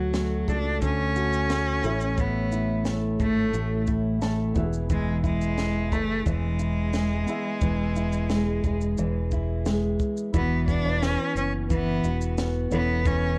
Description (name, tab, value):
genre	acoustic pop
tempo	88 BPM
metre	4/4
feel	straight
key	unclear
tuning	A4 = 439 Hz
part	rich cello	melody	0.0-13.4 s	F#3 to D4	-31 LUFS	equal	none
part	felt-muted upright piano	accompaniment	0.0-13.4 s	A3 to A5	-41 LUFS	equal	none
part	fingerpicked steel-string acoustic guitar	accompaniment	0.0-13.4 s	A2 to A4	-30 LUFS	equal	none
part	fingered electric bass	bass	0.0-13.4 s	E1 to D2	-30 LUFS	equal	none
part	compact cocktail drum kit	drums	0.1-13.2 s	kick drum, shaker, snare drum	-32 LUFS	equal	none
room	light reverb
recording	dark, warm production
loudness	-26 LUFS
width	mono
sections	0.0-10.3 A section; 10.3-13.4 B section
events	felt piano fill 3.9-4.9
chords	0.0 D; 1.8 A; 4.6 E; 10.3 Esus2; 12.7 Aadd9/E